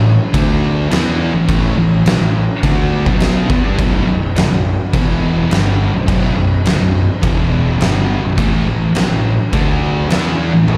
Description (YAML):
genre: stoner and doom metal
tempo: 104 BPM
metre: 4/4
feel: straight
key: unclear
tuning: A4 = 440 Hz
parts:
  - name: sludgy distorted guitar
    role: riff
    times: 0.0-10.8 s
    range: B1 to E4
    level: -25 LUFS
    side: equal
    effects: overdrive, slapback echo
  - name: thick fuzz guitar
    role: riff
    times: 0.0-10.8 s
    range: B1 to E4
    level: -22 LUFS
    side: equal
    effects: distortion, slapback echo
  - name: thick fuzz guitar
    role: riff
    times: 0.0-10.8 s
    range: B1 to E4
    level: -21 LUFS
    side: equal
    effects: none
  - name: fuzz fingered electric bass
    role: bass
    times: 0.0-10.8 s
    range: B0 to G2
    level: -21 LUFS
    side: equal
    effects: overdrive
  - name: oversized low-tuned drum kit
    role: drums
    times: 0.3-10.8 s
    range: crash cymbal, kick drum, snare drum, toms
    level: -20 LUFS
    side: equal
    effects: none
room: studio ambience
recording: live gig heard through the venue's PA, club reverb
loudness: -15 LUFS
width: mono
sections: 0.0-10.8 A section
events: none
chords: 0.3 D5; 0.9 A5; 3.8 Bm; 4.9 E5; 5.5 Bm; 7.2 E5; 7.8 Bm; 8.4 A5; 9.5 D5; 10.1 A5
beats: 0.33 0.91 | 1.48 2.06 2.63 3.21 | 3.78 4.36 4.93 5.51 | 6.08 6.66 7.23 7.81 | 8.38 8.96 9.53 10.11 | 10.68